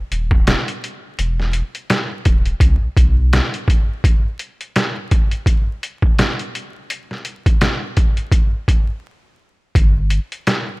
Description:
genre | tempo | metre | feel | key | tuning
hip hop, boom-bap hip-hop | 84 BPM | 4/4 | swing 57% on 16ths | unclear | A4 = 445 Hz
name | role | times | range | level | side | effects
warm sub bass | bass | 0.0-3.4, 9.8-10.2 s | D1 to C2 | -17 LUFS | equal | none
trip hop sampler-style drum kit | drums | 0.1-10.7 s | hi-hat, kick drum, snare drum | -15 LUFS | equal | none
room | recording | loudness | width
little or no reverb | vinyl crackle | -15 LUFS | side -24 dB against mid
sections
0.0-10.8 A section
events
break 9.0-9.8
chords
none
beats
0.47 | 1.18 1.90 2.61 3.32 | 4.04 4.75 5.47 6.18 | 6.89 7.61 8.32 9.04 | 9.75 10.47

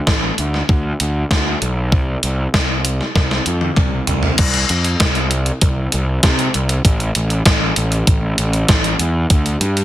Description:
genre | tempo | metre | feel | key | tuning
indie rock | 98 BPM | 4/4 | straight | A minor | A4 = 440 Hz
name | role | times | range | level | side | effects
fuzz picked electric bass | bass | 0.1-9.8 s | A1 to C3 | -18 LUFS | equal | overdrive
gated 80s digital drum machine | drums | 0.1-9.8 s | crash cymbal, hi-hat, kick drum, snare drum, toms | -15 LUFS | equal | gated reverb, gated reverb snare
room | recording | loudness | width
little or no reverb | dense, heavily limited modern master | -14 LUFS | side -13 dB against mid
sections
0.0-4.4 A section; 4.4-9.8 B section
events
drum fill 3.2-4.4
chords
none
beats
0.07 0.69 1.31 | 1.92 2.54 3.16 3.77 | 4.39 5.00 5.62 6.23 | 6.85 7.46 8.08 8.69 | 9.31

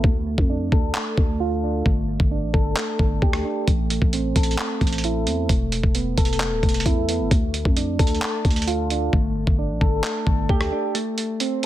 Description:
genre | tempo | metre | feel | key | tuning
hip hop, trap | 132 BPM | 4/4 | half-time | A minor | A4 = 443 Hz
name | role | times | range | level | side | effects
soft electric-piano-like synth keys | arpeggios | 0.0-11.7 s | A3 to A4 | -25 LUFS | right 1 dB | chorus, low-pass filter, tape echo
growling 808-style bass | bass | 0.0-10.7 s | D1 to F2 | -25 LUFS | equal | none
dusty soul sampler-style drum kit | drums | 0.0-11.7 s | handclaps, hi-hat, kick drum, rim click | -21 LUFS | equal | none
room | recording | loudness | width
digital ambience | dense, heavily limited modern master | -19 LUFS | side -13 dB against mid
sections
0.0-11.7 A section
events
break 0.0-3.7, 10.9-11.7; filter sweep on synth keys 0.0-10.9; hi-hats muted 1.9-3.7, 9.1-10.9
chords
0.0 Dm; 1.9 Gsus2; 3.7 Am; 5.5 Esus4; 7.3 Dm; 9.1 Gsus2; 10.9 Am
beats
| 0.04 0.49 0.95 1.40 | 1.86 2.31 2.77 3.22 | 3.67 4.13 4.58 5.04 | 5.49 5.95 6.40 6.86 | 7.31 7.77 8.22 8.68 | 9.13 9.59 10.04 10.49 | 10.95 11.40

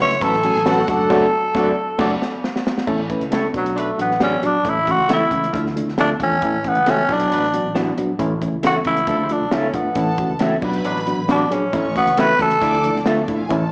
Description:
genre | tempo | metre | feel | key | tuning
uptempo 1960s-style soul | 136 BPM | 4/4 | straight | A major | A4 = 440 Hz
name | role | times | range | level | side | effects
growling tenor saxophone | melody | 0.0-13.1 s | F#3 to C#5 | -21 LUFS | equal | none
warm horn section | second line | 0.0-12.8 s | E3 to E5 | -34 LUFS | equal | none
warm symphonic violin section | second line | 0.0-1.0, 10.0-13.7 s | B3 to D6 | -31 LUFS | equal | slapback echo
reed electric piano | accompaniment | 0.0-13.6 s | E3 to B4 | -24 LUFS | equal | slapback echo
fingered electric bass | bass | 0.0-13.7 s | F#1 to E2 | -31 LUFS | equal | none
compact cocktail drum kit | drums | 0.0-13.6 s | crash cymbal, hi-hat, kick drum, snare drum | -28 LUFS | equal | slapback echo
electric guitar through a small old amp | stabs | 0.7-13.2 s | D4 to E5 | -28 LUFS | equal | tremolo, slapback echo
room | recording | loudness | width
light reverb, studio ambience | live gig heard through the venue's PA, club reverb, small speaker sound | -19 LUFS | mono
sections
0.0-2.9 A section; 2.9-13.7 B section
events
band accent 1.1-2.9; drum fill 2.0-2.9; tenor saxophone solo 2.9-13.7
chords
0.0 F#m; 0.9 D/F#; 2.9 A; 3.5 Bm; 4.7 A; 5.5 Dmadd9; 6.4 A; 7.1 Bm; 8.2 A; 9.1 Dmadd9; 10.0 A; 10.6 Bm; 11.7 A; 12.6 Dmadd9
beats
0.22 0.66 | 1.10 1.55 1.99 2.43 | 2.88 3.32 3.76 4.21 | 4.65 5.09 5.54 5.98 | 6.42 6.87 7.31 7.75 | 8.20 8.64 9.08 9.52 | 9.97 10.41 10.85 11.29 | 11.74 12.18 12.62 13.07 | 13.51

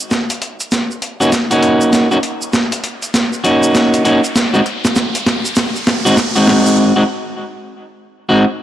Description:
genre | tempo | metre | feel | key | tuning
glitch hop | 99 BPM | 4/4 | swing 62% on 16ths | Eb dorian | A4 = 443 Hz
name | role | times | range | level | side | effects
tube shaker | percussion | 0.0-6.8 s | none | -25 LUFS | right 3 dB | none
riser | sound effects | 1.0-6.8 s | none | -25 LUFS | equal | none
boom bap sampler-style drum kit | drums | 0.1-6.8 s | hi-hat, snare drum | -16 LUFS | equal | overdrive
electric guitar at the edge of break-up | stabs | 1.2-8.4 s | Ab3 to Gb4 | -13 LUFS | equal | analog delay
room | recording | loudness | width
light reverb | dry, gritty hardware recording, transformer saturation, cassette tape | -12 LUFS | side -12 dB against mid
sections
0.0-8.6 A section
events
build-up 0.0-8.6; drum fill 0.0-6.8; riser 1.0-6.8; break 6.8-8.6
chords
0.0 Ebm7; 4.4 Ab7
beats
0.11 0.72 1.32 | 1.93 2.54 3.14 3.75 | 4.35 4.96 5.57 6.17 | 6.78 7.38 7.99

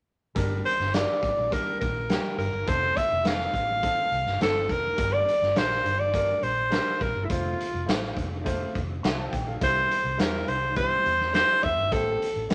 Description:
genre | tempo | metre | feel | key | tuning
uptempo 1960s-style soul | 104 BPM | 4/4 | straight | G dorian | A4 = 440 Hz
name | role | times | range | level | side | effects
warm upright piano | accompaniment | 0.3-12.5 s | F3 to C6 | -38 LUFS | equal | none
vintage muted fingered electric bass | bass | 0.4-12.5 s | F1 to E2 | -35 LUFS | equal | none
raw garage drum kit | drums | 0.4-12.5 s | hi-hat, kick drum, snare drum | -32 LUFS | equal | none
breathy alto saxophone | melody | 0.7-12.5 s | E4 to F5 | -27 LUFS | equal | none
room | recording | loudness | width
moderate studio reverb, RT60 0.9 s | none | -26 LUFS | mono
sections
0.4-5.0 A section; 5.0-12.5 B section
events
none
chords
0.4 Gm; 2.7 F; 5.0 Gm; 7.3 F; 9.6 C; 11.9 Am7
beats
| 0.36 0.94 1.52 2.10 | 2.67 3.25 3.83 4.41 | 4.99 5.57 6.14 6.72 | 7.30 7.88 8.46 9.04 | 9.61 10.19 10.77 11.35 | 11.93 12.50

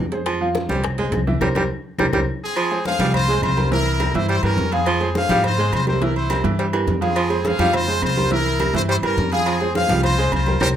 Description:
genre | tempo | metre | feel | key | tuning
latin, salsa | 209 BPM | 4/4 | straight | F harmonic minor | A4 = 441 Hz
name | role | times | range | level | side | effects
warm baritone saxophone | second line | 0.0-10.7 s | E3 to Ab3 | -25 LUFS | right 3 dB | none
clear upright piano | accompaniment | 0.0-10.7 s | E3 to F5 | -23 LUFS | right 3 dB | none
upright bass | bass | 0.0-10.7 s | C2 to Ab2 | -23 LUFS | left 1 dB | none
bongos and cowbell | percussion | 0.1-10.7 s | none | -31 LUFS | left 5 dB | none
timbales and agogo bells | percussion | 0.1-10.7 s | none | -30 LUFS | right 5 dB | none
claves | percussion | 0.3-10.7 s | none | -34 LUFS | left 8 dB | none
congas | percussion | 0.3-10.7 s | none | -28 LUFS | left 2 dB | none
bright trumpet section | melody | 2.4-10.7 s | C4 to F5 | -22 LUFS | left 2 dB | none
room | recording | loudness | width
moderate small room reverb, RT60 0.5 s | none | -17 LUFS | side -10 dB against mid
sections
0.0-2.6 A section; 2.6-10.8 B section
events
drum fill 1.4-2.6, 10.6; band accent 1.4-2.6, 10.6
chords
0.3 Fm; 1.4 C5; 2.6 Fmadd9; 3.7 C7; 4.9 Fmadd9; 6.0 C7; 7.2 Fmadd9; 8.3 C7; 9.5 Fmadd9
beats
| 0.26 0.55 0.84 1.13 | 1.41 1.70 1.99 2.28 | 2.56 2.85 3.14 3.43 | 3.71 4.00 4.29 4.58 | 4.86 5.15 5.44 5.72 | 6.01 6.30 6.59 6.87 | 7.16 7.45 7.74 8.02 | 8.31 8.60 8.88 9.17 | 9.46 9.75 10.03 10.32 | 10.61

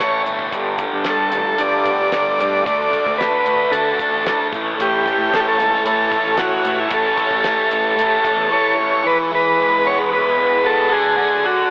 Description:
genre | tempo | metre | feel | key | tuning
psychedelic rock | 113 BPM | 4/4 | straight | A mixolydian | A4 = 441 Hz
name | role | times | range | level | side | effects
combo organ | melody | 0.0-11.7 s | E4 to D5 | -16 LUFS | equal | tape echo
fuzz guitar | riff | 0.0-11.7 s | G2 to D4 | -20 LUFS | equal | distortion, phaser, tape echo
fuzz fingered electric bass | bass | 0.0-8.5 s | G1 to D3 | -26 LUFS | equal | overdrive
damped 70s drum kit | drums | 0.0-8.4 s | hi-hat, kick drum, snare drum | -27 LUFS | equal | none
clear studio string section | sustained chords | 0.5-11.7 s | D3 to C#5 | -26 LUFS | equal | none
room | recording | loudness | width
moderate spring reverb, RT60 2.4 s | echo-heavy mix, telephone sound | -14 LUFS | side -25 dB against mid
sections
0.0-9.0 A section; 9.0-11.7 B section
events
none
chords
0.0 A; 0.5 Gsus2; 2.7 Dadd9; 4.5 A; 9.0 E; 10.9 D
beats
0.00 | 0.53 1.06 1.59 2.12 | 2.65 3.19 3.72 4.25 | 4.78 5.32 5.85 6.38 | 6.91 7.45 7.98 8.51 | 9.04 9.58 10.11 10.64 | 11.17

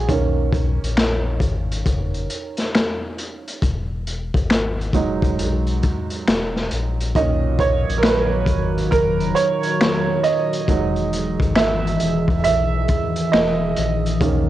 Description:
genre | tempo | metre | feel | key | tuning
lo-fi hip hop | 68 BPM | 4/4 | swing 64% on 16ths | unclear | A4 = 440 Hz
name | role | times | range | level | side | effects
clear upright piano | accompaniment | 0.0-14.5 s | A#2 to E5 | -22 LUFS | right 5 dB | cassette tape
sub bass with octave | bass | 0.0-14.5 s | E1 to B1 | -24 LUFS | left 1 dB | none
crunchy breakbeat drum kit | drums | 0.1-14.5 s | finger snaps, hi-hat, kick drum, snare drum | -21 LUFS | left 1 dB | vintage 12-bit sampler grit, cassette tape
warbly tape-like pad | sustained chords | 7.2-14.5 s | D#3 to A#4 | -24 LUFS | left 2 dB | chorus, built-in reverb, cassette tape
room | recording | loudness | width
light reverb, studio ambience | home recording on cassette | -17 LUFS | side -13 dB against mid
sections
0.0-14.5 A section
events
upright piano solo 0.0-14.5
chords
0.1 Bmaj7; 3.6 Emaj7; 7.2 Bmaj7; 10.7 Emaj7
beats
| 0.09 0.98 1.86 2.74 | 3.62 4.51 5.39 6.27 | 7.15 8.04 8.92 9.80 | 10.68 11.56 12.45 13.33 | 14.21

